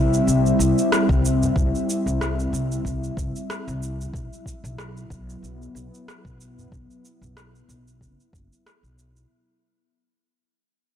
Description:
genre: organic downtempo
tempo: 93 BPM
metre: 4/4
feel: swing 55% on 16ths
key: unclear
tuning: A4 = 441 Hz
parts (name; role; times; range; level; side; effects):
- airy breathy pad; sustained chords; 0.0-9.3 s; F#3 to E5; -24 LUFS; left 1 dB; chorus, sidechain pumping
- upright bass; bass; 0.0-9.2 s; F#1 to C2; -25 LUFS; equal; none
- electronic shaker and rim click; drums; 0.1-9.3 s; none; -29 LUFS; equal; soft clipping on snare
- electronic kick drum; drums; 1.1-8.5 s; none; -27 LUFS; equal; none
- udu; percussion; 1.4-8.5 s; none; -34 LUFS; right 2 dB; none
room: light reverb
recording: blown-out, overdriven recording, overdrive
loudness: -20 LUFS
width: side -9 dB against mid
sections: 0.0-9.3 A section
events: fade-out 0.0-9.3; filter sweep on analog synth pad 0.0-9.3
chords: 0.0 C; 4.1 Bsus4

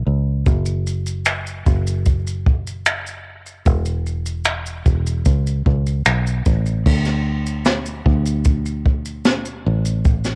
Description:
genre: acoustic pop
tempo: 75 BPM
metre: 4/4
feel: straight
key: unclear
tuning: A4 = 440 Hz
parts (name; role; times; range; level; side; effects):
- fingered electric bass; bass; 0.0-10.4 s; E1 to D2; -23 LUFS; equal; none
- jazz brush drum kit; drums; 0.5-10.4 s; crash cymbal, finger snaps, kick drum, shaker, snare drum; -21 LUFS; equal; cassette tape
room: little or no reverb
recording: home recording on cassette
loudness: -19 LUFS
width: mono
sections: 0.0-6.9 A section; 6.9-10.4 B section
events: none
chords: none

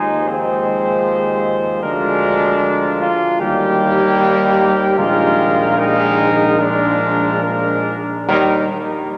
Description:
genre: classical, brass quintet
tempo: 69-78 BPM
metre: 4/4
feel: straight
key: Eb major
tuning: A4 = 436 Hz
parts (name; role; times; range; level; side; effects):
- mellow trumpet; melody; 0.0-8.7 s; Bb4 to C5; -23 LUFS; equal; none
- mellow flugelhorn; second line; 0.0-8.7 s; C4 to G4; -21 LUFS; equal; none
- brilliant trombone; accompaniment; 0.0-8.7 s; Eb3 to F3; -28 LUFS; equal; none
- clear French horn; accompaniment; 0.0-8.7 s; G3 to Ab3; -23 LUFS; equal; none
- warm tuba; bass; 0.0-8.7 s; Bb1 to Eb2; -23 LUFS; equal; none
room: wet cathedral reverb, RT60 4.8 s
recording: none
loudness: -16 LUFS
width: mono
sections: 0.0-8.3 A section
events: slowing down 0.3-8.3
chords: 0.0 Fm7/Eb; 1.8 Bb7/D; 3.4 Eb; 5.0 Bb7sus4; 6.6 Bb7; 8.3 Eb

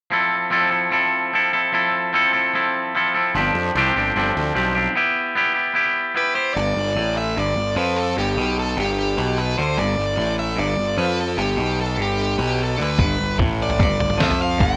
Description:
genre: indie rock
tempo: 149 BPM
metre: 4/4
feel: straight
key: G mixolydian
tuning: A4 = 444 Hz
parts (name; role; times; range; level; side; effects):
- twangy electric guitar; riff; 0.1-14.8 s; G2 to A4; -22 LUFS; equal; none
- fuzz picked electric bass; bass; 3.3-14.8 s; G1 to F2; -26 LUFS; equal; overdrive
- overdriven electric guitar; melody; 6.2-14.8 s; G4 to G5; -26 LUFS; equal; none
- lo-fi sampler-style drum kit; drums; 13.0-14.7 s; kick drum, snare drum, toms; -23 LUFS; equal; none
room: moderate small room reverb, RT60 0.5 s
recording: rough home demo mix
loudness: -20 LUFS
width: mono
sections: 0.1-6.6 A section; 6.6-14.8 B section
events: none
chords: 0.1 Fmaj7; 3.3 G7sus4; 5.0 Cmaj7/B (rootless); 6.6 G

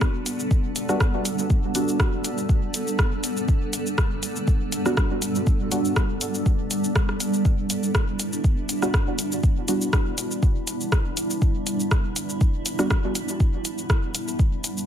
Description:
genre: dub techno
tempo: 121 BPM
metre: 4/4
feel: swing 54% on 16ths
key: E minor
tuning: A4 = 439 Hz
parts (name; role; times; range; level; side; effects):
- granular cloud pad; sustained chords; 0.0-14.9 s; G3 to A4; -27 LUFS; right 1 dB; built-in reverb, sidechain pumping
- deep mellow chord stab; stabs; 0.0-12.9 s; G3 to F#4; -28 LUFS; right 1 dB; chorus, phaser, sidechain pumping, dub echo
- deep house drum kit; drums; 0.0-14.9 s; cabasa, hi-hat, rim click; -28 LUFS; equal; none
- electronic kick drum; drums; 0.0-14.5 s; none; -21 LUFS; equal; none
room: light reverb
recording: none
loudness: -21 LUFS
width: side -9 dB against mid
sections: 0.0-14.9 A section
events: none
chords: 0.0 Em7

